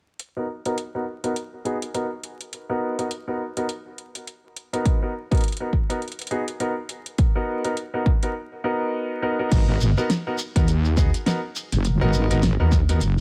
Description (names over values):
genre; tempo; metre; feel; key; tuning
glitch hop; 103 BPM; 4/4; swing 58% on 16ths; G# minor; A4 = 440 Hz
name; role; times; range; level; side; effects
pop drum kit; drums; 0.2-13.1 s; crash cymbal, hi-hat, snare drum; -31 LUFS; equal; none
bright concert grand piano; stabs; 0.4-13.0 s; B3 to A#4; -29 LUFS; equal; sidechain pumping, low-pass filter, tape echo
electronic kick drum; drums; 4.9-12.9 s; none; -22 LUFS; equal; none
wobble bass; bass; 9.5-13.2 s; F#1 to D#2; -22 LUFS; equal; chorus, tube saturation
shekere; percussion; 9.5-13.1 s; none; -37 LUFS; equal; none
room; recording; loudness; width
little or no reverb; vinyl crackle; -24 LUFS; mono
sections
0.2-9.5 A section; 9.5-13.2 B section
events
break 8.4-9.5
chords
0.2 G#m9 (rootless); 9.5 G#m9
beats
| 0.20 0.78 1.36 1.94 | 2.52 3.11 3.69 4.27 | 4.86 5.44 6.02 6.60 | 7.19 7.77 8.35 8.93 | 9.52 10.10 10.68 11.26 | 11.85 12.43 13.01